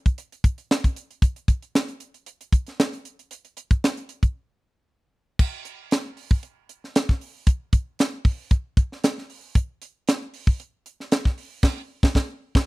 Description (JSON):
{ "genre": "pop", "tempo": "115 BPM", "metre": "4/4", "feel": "swing 54% on 16ths", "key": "none", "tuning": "none", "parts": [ { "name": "tight funk drum kit", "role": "drums", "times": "0.1-12.7 s", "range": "crash cymbal, hi-hat, kick drum, snare drum", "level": "-19 LUFS", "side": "equal", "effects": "none" } ], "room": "light reverb", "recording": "dry, close 1970s-style studio recording", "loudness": "-22 LUFS", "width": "side -22 dB against mid", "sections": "0.0-5.4 A section; 5.4-12.7 B section", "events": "break 4.3-5.4; band accent 11.6-12.7", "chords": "none" }